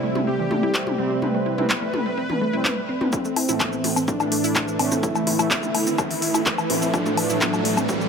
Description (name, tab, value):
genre	melodic techno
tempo	126 BPM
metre	4/4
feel	straight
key	A minor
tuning	A4 = 440 Hz
part	soft supersaw	melody	0.0-8.1 s	C4 to B4	-27 LUFS	equal	sidechain pumping, ping-pong delay
part	dark analog pad	sustained chords	0.0-8.1 s	A3 to E5	-30 LUFS	right 2 dB	chorus, phaser, sidechain pumping
part	wide unison pluck	arpeggios	0.0-8.1 s	E3 to C5	-28 LUFS	right 1 dB	sidechain pumping, dub echo
part	analog synth brass	stabs	0.0-8.1 s	A2 to C4	-28 LUFS	right 1 dB	chorus, sidechain pumping, dub echo
part	techno drum kit	drums	0.2-8.1 s	handclaps, hi-hat, shaker, toms, woodblock	-24 LUFS	left 2 dB	high-pass filter on toms, high-pass filter on snare, high-pass filter on perc, high-pass filter on hats, high-pass filter on room
part	electronic kick drum	drums	3.1-8.0 s	none	-29 LUFS	equal	high-pass filter on kick, high-pass filter on room
part	riser	sound effects	5.1-8.1 s	none	-29 LUFS	equal	none
room	light reverb, digital ambience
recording	none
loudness	-20 LUFS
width	side -6 dB against mid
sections	0.0-3.1 A section; 3.1-8.1 B section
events	filter sweep on analog synth pad 0.0-3.1; build-up 3.1-8.1; riser 5.1-8.1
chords	0.0 C6; 3.1 Amadd9